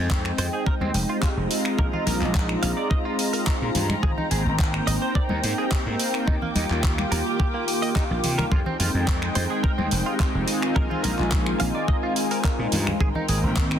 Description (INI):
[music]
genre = nu-disco, nu disco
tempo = 107 BPM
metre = 4/4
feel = straight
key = unclear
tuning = A4 = 440 Hz
[part]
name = warm analog pad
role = accompaniment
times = 0.0-13.8 s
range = Ab3 to G5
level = -27 LUFS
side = equal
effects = chorus, sidechain pumping, digital delay
[part]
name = muted studio string section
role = sustained chords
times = 0.0-13.8 s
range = Eb3 to D6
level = -32 LUFS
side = equal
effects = sidechain pumping
[part]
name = gritty slap bass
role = bass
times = 0.0-13.8 s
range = F1 to C3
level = -26 LUFS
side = equal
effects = overdrive, sidechain pumping
[part]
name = electronic kick drum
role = drums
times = 0.1-13.7 s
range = none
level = -23 LUFS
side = equal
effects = none
[part]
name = pop drum kit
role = drums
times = 0.1-13.8 s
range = finger snaps, handclaps, hi-hat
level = -30 LUFS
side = right 1 dB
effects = overdrive
[part]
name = direct-recorded clean electric guitar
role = riff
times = 0.4-13.4 s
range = Bb3 to F5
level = -31 LUFS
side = right 4 dB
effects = analog chorus, vintage 12-bit sampler grit, digital delay
[part]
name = congas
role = percussion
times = 0.8-13.3 s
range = none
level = -32 LUFS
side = left 2 dB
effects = none
[sound]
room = light reverb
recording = dense, heavily limited modern master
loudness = -21 LUFS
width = side -9 dB against mid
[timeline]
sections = 0.0-13.8 A section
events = none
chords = 0.0 Fm9; 1.5 Bb7sus4; 4.0 Abmaj9; 6.3 Ebmaj7; 8.5 Fm9; 10.5 Bb7sus4; 13.0 Abmaj9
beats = 0.11 0.67 1.23 | 1.79 2.35 2.91 3.47 | 4.03 4.59 5.15 5.71 | 6.28 6.84 7.40 7.96 | 8.52 9.08 9.64 10.20 | 10.76 11.32 11.88 12.44 | 13.00 13.56